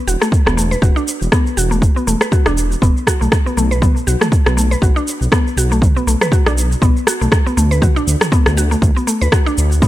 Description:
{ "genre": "afro house", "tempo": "120 BPM", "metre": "4/4", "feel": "swing 56% on 16ths", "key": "B minor pentatonic", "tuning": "A4 = 440 Hz", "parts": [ { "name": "mallet-like synth pluck", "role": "arpeggios", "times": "0.1-9.9 s", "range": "A3 to B4", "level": "-19 LUFS", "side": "equal", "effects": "chorus, sidechain pumping, tape echo" }, { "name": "dark detuned saw bass", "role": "bass", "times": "0.1-9.9 s", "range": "E1 to D2", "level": "-16 LUFS", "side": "equal", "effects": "sidechain pumping" }, { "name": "house drum kit", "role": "drums", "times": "0.1-9.9 s", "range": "rim click, shaker, toms", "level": "-19 LUFS", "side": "equal", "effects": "overdrive" }, { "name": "electronic kick drum", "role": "drums", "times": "0.3-9.9 s", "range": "none", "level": "-14 LUFS", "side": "equal", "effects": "overdrive" } ], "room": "digital ambience", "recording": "none", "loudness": "-12 LUFS", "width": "side -15 dB against mid", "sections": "0.0-9.9 A section", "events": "none", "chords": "0.0 Esus2; 3.8 Bm7; 7.8 D", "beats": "0.32 0.82 1.32 | 1.82 2.32 2.82 3.32 | 3.82 4.32 4.82 5.32 | 5.82 6.32 6.82 7.32 | 7.82 8.32 8.82 9.32 | 9.82" }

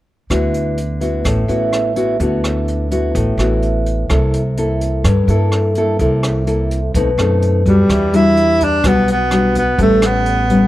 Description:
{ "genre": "bossa nova", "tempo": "127 BPM", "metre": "4/4", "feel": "straight", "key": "D major", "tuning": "A4 = 441 Hz", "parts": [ { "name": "nylon-string guitar", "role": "accompaniment", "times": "0.3-10.7 s", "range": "G2 to A4", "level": "-16 LUFS", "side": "left 2 dB", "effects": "none" }, { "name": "upright bass", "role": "bass", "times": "0.3-10.7 s", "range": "A1 to G2", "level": "-18 LUFS", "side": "right 1 dB", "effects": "none" }, { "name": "jazz brush drum kit", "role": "drums", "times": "0.3-10.6 s", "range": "hi-hat, kick drum, rim click", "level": "-23 LUFS", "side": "equal", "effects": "none" }, { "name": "breathy tenor saxophone", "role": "melody", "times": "7.7-10.7 s", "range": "G3 to E4", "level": "-14 LUFS", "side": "right 1 dB", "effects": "none" } ], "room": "light reverb", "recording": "none", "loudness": "-13 LUFS", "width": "side -15 dB against mid", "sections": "0.3-7.9 A section; 7.9-10.7 B section", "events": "none", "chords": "0.3 D69; 4.1 C6; 6.9 B7b9; 7.9 Em9; 9.8 A9", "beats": "| 0.30 0.78 1.25 1.73 | 2.20 2.67 3.15 3.62 | 4.10 4.57 5.04 5.52 | 5.99 6.47 6.94 7.42 | 7.89 8.36 8.84 9.31 | 9.78 10.26" }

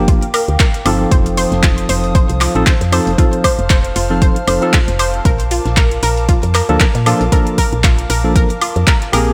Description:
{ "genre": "deep house", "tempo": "116 BPM", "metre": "4/4", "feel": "swing 56% on 16ths", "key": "unclear", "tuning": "A4 = 441 Hz", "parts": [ { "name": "dark analog pad", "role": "sustained chords", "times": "0.0-9.3 s", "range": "Bb3 to F6", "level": "-27 LUFS", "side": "equal", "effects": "chorus, sidechain pumping" }, { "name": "tine electric piano", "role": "stabs", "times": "0.0-9.3 s", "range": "F3 to A4", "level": "-21 LUFS", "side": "equal", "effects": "vintage 12-bit sampler grit, sidechain pumping, dub echo" }, { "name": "woody FM bass", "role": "bass", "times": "0.0-9.3 s", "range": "F1 to Bb2", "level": "-20 LUFS", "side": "equal", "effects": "none" }, { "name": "analog pluck", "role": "arpeggios", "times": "0.1-9.2 s", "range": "F4 to C5", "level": "-23 LUFS", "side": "equal", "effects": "chorus, sidechain pumping, digital delay" }, { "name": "deep house drum kit", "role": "drums", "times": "0.1-9.2 s", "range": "handclaps, hi-hat, woodblock", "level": "-22 LUFS", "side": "equal", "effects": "studio reverb" }, { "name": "dusty soul sampler-style drum kit", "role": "drums", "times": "0.1-9.3 s", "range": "hi-hat, snare drum", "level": "-32 LUFS", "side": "equal", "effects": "none" }, { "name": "electronic kick drum", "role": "drums", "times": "0.1-9.0 s", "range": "none", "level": "-15 LUFS", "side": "equal", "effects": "studio reverb" } ], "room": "light reverb", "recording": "none", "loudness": "-14 LUFS", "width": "mono", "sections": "0.0-9.3 A section", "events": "none", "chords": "0.0 Gm7; 1.1 F7; 5.3 Bbmaj7", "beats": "0.08 0.60 | 1.11 1.63 2.15 2.67 | 3.18 3.70 4.22 4.74 | 5.25 5.77 6.29 6.80 | 7.32 7.84 8.36 8.87" }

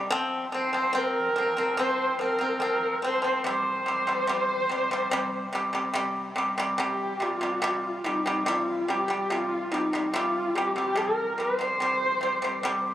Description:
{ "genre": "mongolian traditional, Mongolian folk", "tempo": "72 BPM", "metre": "4/4", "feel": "straight", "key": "C yu mode", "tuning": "A4 = 440 Hz", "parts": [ { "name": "pipa", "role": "arpeggios", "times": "0.0-12.9 s", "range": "C3 to C4", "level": "-27 LUFS", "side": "equal", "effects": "none" }, { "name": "dark horsehead fiddle", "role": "melody", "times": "0.6-12.9 s", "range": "Eb4 to C5", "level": "-27 LUFS", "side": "equal", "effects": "none" } ], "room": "moderate huge ambient reverb, RT60 7.8 s", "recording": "recorded on a phone in the room, club reverb, compression", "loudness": "-24 LUFS", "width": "side -12 dB against mid", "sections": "0.0-6.8 A section; 6.8-12.9 B section", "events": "none", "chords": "0.1 F5; 3.4 C5", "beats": "| 0.10 0.94 1.78 2.61 | 3.45 4.28 5.12 5.96 | 6.79 7.63 8.46 9.30 | 10.13 10.97 11.80 12.63" }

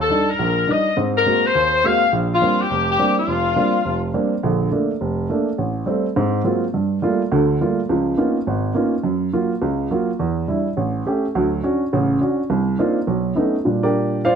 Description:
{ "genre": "jazz", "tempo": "208 BPM", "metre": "4/4", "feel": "swing 62% on 8ths", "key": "Bb major", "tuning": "A4 = 440 Hz", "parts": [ { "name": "bright saxophone section", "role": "melody", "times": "0.0-4.1 s", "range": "F4 to F5", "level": "-17 LUFS", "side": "left 4 dB", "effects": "plate reverb" }, { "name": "warm upright piano", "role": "accompaniment", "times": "0.0-14.4 s", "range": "F1 to F5", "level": "-18 LUFS", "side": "right 2 dB", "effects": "none" } ], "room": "moderate large studio reverb, RT60 0.9 s", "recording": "none", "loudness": "-17 LUFS", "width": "side -7 dB against mid", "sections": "0.0-4.4 A section; 4.4-13.7 B section", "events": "none", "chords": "0.0 Ebmaj7; 1.0 Ab9; 2.1 Bb69; 4.4 Bbmaj7; 5.6 Am7; 6.2 Ab13; 6.7 Gm9; 7.9 Db13; 9.0 Gbmaj7; 10.2 Em7; 10.8 A7; 11.3 Dmaj7; 12.5 Cm11; 13.1 B9; 13.7 Bb69", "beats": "0.10 0.39 0.68 | 0.96 1.25 1.54 1.83 | 2.12 2.40 2.69 2.98 | 3.27 3.56 3.85 4.13 | 4.42 4.71 5.00 5.29 | 5.58 5.86 6.15 6.44 | 6.73 7.02 7.30 7.59 | 7.88 8.17 8.46 8.75 | 9.03 9.32 9.61 9.90 | 10.19 10.48 10.77 11.05 | 11.34 11.63 11.92 12.21 | 12.50 12.79 13.07 13.36 | 13.65 13.94 14.23" }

